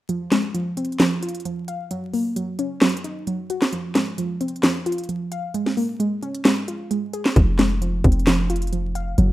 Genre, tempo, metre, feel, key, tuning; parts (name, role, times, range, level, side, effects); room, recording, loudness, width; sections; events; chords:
hip hop, trap; 132 BPM; 4/4; half-time; F phrygian; A4 = 440 Hz
warbly dusty pluck; accompaniment; 0.1-9.3 s; F3 to F5; -24 LUFS; equal; chorus, low-pass filter
trap drum kit; drums; 0.1-9.3 s; handclaps, hi-hat, kick drum, snare drum; -20 LUFS; equal
warm 808-style bass; bass; 7.4-9.3 s; F1 to Gb1; -20 LUFS; equal
light reverb, digital ambience; rough home demo mix, vinyl crackle; -20 LUFS; side -16 dB against mid
0.1-9.3 A section
break 0.1-7.4
0.1 Fm; 1.9 Gb6; 3.7 Fm; 5.5 Db6; 7.4 Fm